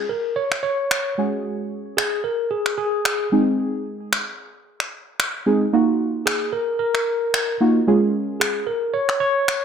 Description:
dance-pop; 112 BPM; 4/4; straight; Db major; A4 = 440 Hz
tine electric piano; melody; 0.0-9.6 s; Ab4 to Db5; -23 LUFS; left 1 dB; medium stereo tremolo, analog delay
deep mellow chord stab; accompaniment; 0.0-8.6 s; Ab3 to Ab4; -19 LUFS; right 2 dB; chorus
electronic finger snaps; drums; 0.5-9.6 s; -23 LUFS; equal; overdrive
moderate plate reverb, RT60 1.2 s; dreamy mix soaked in reverb; -19 LUFS; side -7 dB against mid
0.0-9.6 A section
0.0 N.C.; 1.2 Gbsus2; 3.3 Ab; 5.7 Ebmadd9; 7.9 Db
0.38 0.91 | 1.45 1.98 2.52 3.06 | 3.59 4.13 4.66 5.20 | 5.73 6.27 6.80 7.34 | 7.88 8.41 8.95 9.48

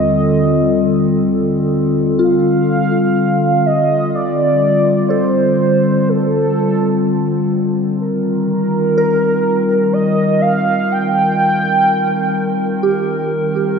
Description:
ambient; 62 BPM; 3/4; straight; Eb lydian; A4 = 442 Hz
warm velvety synth lead; melody; 0.0-13.3 s; A4 to G5; -17 LUFS; right 1 dB; chorus, cassette tape, diffuse ambient delay
warbly tape-like pad; sustained chords; 0.0-13.8 s; Eb2 to Bb4; -15 LUFS; left 1 dB; chorus, built-in reverb
soft synth bell; arpeggios; 0.0-13.8 s; F4 to Bb4; -22 LUFS; right 1 dB; chorus, phaser, diffuse ambient delay
wet lush hall reverb, RT60 3.0 s; dreamy mix soaked in reverb; -13 LUFS; side -6 dB against mid
0.0-13.8 A section
0.0 Eb6; 2.2 F; 8.0 Eb6
0.26 1.23 | 2.20 3.17 4.13 | 5.10 6.07 7.04 | 8.01 8.97 9.94 | 10.91 11.88 12.84

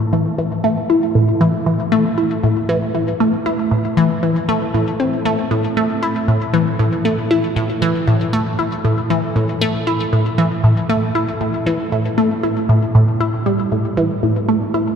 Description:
ambient; 117 BPM; 4/4; straight; A4 = 441 Hz
resonant blip pluck; solo; 0.0-15.0 s; A2 to E4; -15 LUFS; equal; phaser, ping-pong delay
wet cathedral reverb, RT60 5.3 s; in a vast, echoing space; -15 LUFS; side -7 dB against mid
0.0-13.7 A section; 13.7-15.0 B section
0.38 0.90 | 1.41 1.92 2.43 2.95 | 3.46 3.97 4.49 5.00 | 5.51 6.02 6.54 7.05 | 7.56 8.07 8.59 9.10 | 9.61 10.13 10.64 11.15 | 11.66 12.18 12.69 13.20 | 13.72 14.23 14.74

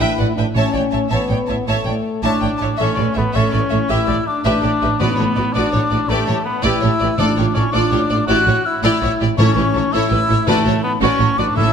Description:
cinematic, heroic adventure film score; 109 BPM (dotted quarters); 12/8; straight; A mixolydian; A4 = 441 Hz
rich symphonic violin section; melody; 0.0-11.7 s; B4 to A5; -25 LUFS; left 3 dB
warm symphonic violin section; second line; 0.0-11.7 s; F#4 to E5; -28 LUFS; left 2 dB
rich symphonic viola section; accompaniment; 0.0-11.7 s; C#4 to C#5; -25 LUFS; right 2 dB
warm French horn section; sustained chords; 0.0-11.7 s; A3 to F#4; -23 LUFS; left 5 dB
clear symphonic double bass section; bass; 0.0-11.7 s; A1; -22 LUFS; right 3 dB
rich symphonic cello section; bass; 0.0-11.7 s; A2; -22 LUFS; right 3 dB
timpani; percussion; 0.6-1.1, 5.0-11.7 s; A2; -23 LUFS; equal
concert flute; second line; 2.2-11.7 s; A5 to F#6; -22 LUFS; left 3 dB
warm cor anglais; second line; 2.2-11.7 s; A3 to F#4; -25 LUFS; right 2 dB
moderate scoring stage reverb, RT60 1.7 s; -14 LUFS; side -7 dB against mid
0.0-2.8 A section; 2.8-11.7 A section
0.0 Em7; 0.6 A; 3.9 Em7/A; 5.0 Bm/A; 6.1 Gadd9/A; 7.2 Dm/A; 8.3 Em7/A; 9.4 A; 10.5 D6/A
0.00 | 0.55 1.11 1.67 2.24 | 2.80 3.35 3.90 4.46 | 5.01 5.55 6.10 6.65 | 7.20 7.75 8.29 8.84 | 9.39 9.93 10.48 11.02 | 11.57

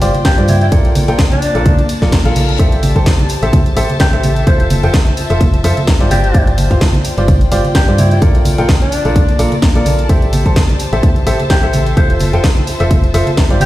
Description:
piano house; 128 BPM; 4/4; swing 55% on 16ths; A4 = 440 Hz
bright upright piano; riff; 0.0-13.7 s; F4 to A5; -19 LUFS; equal; sidechain pumping, tape echo
solid FM bass; bass; 0.0-13.7 s; F1 to G2; -15 LUFS; equal; sidechain pumping
house drum kit; drums; 0.0-13.7 s; hi-hat, snare drum; -22 LUFS; equal
tambourine and congas; percussion; 0.0-13.7 s; -19 LUFS; right 1 dB
dark chamber string section; texture; 0.0-13.7 s; Bb3 to A5; -23 LUFS; left 2 dB; sidechain pumping
growling alto saxophone; melody; 0.2-13.7 s; D4 to C5; -21 LUFS; equal; tape echo
electronic kick drum; drums; 0.3-13.5 s; -12 LUFS; equal
reverse cymbal; sound effects; 1.9-2.6 s; -28 LUFS; left 5 dB
light reverb, small room ambience; played on a big sound system in a bare room, stone room reverb; -10 LUFS; side -15 dB against mid
0.0-13.7 A section
reverse cymbal 1.9-2.6
0.0 G7sus4; 0.7 Bbmaj7; 2.6 Am7; 4.5 Fmaj7; 6.1 G7sus4; 8.2 Bbmaj7; 10.1 Am7; 12.0 Fmaj7
0.25 | 0.72 1.19 1.66 2.12 | 2.59 3.06 3.53 4.00 | 4.47 4.94 5.41 5.88 | 6.34 6.81 7.28 7.75 | 8.22 8.69 9.16 9.62 | 10.09 10.56 11.03 11.50 | 11.97 12.44 12.91 13.38

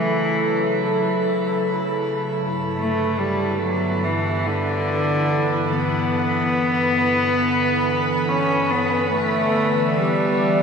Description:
ambient; 71 BPM; 4/4; straight; A4 = 440 Hz
rich cello; melody; 0.0-10.6 s; D3 to C#4; -21 LUFS; equal; tape echo
warbly tape-like pad; sustained chords; 0.0-10.6 s; G2 to B4; -22 LUFS; equal; chorus, built-in reverb
glass harmonica; texture; 0.0-10.6 s; B4 to E6; -29 LUFS; equal
analog drone; drone; 9.8-10.6 s; B3 to D5; -25 LUFS; right 1 dB; chorus
wet shimmer reverb, RT60 7.7 s; -18 LUFS; side -6 dB against mid
0.0-10.6 A section
fade-in on glass harmonica 0.0-10.6
0.0 F#m7; 2.4 Em7/G; 9.1 G
0.70 1.53 | 2.36 3.19 4.03 4.87 | 5.71 6.55 7.40 8.26 | 9.12 9.96

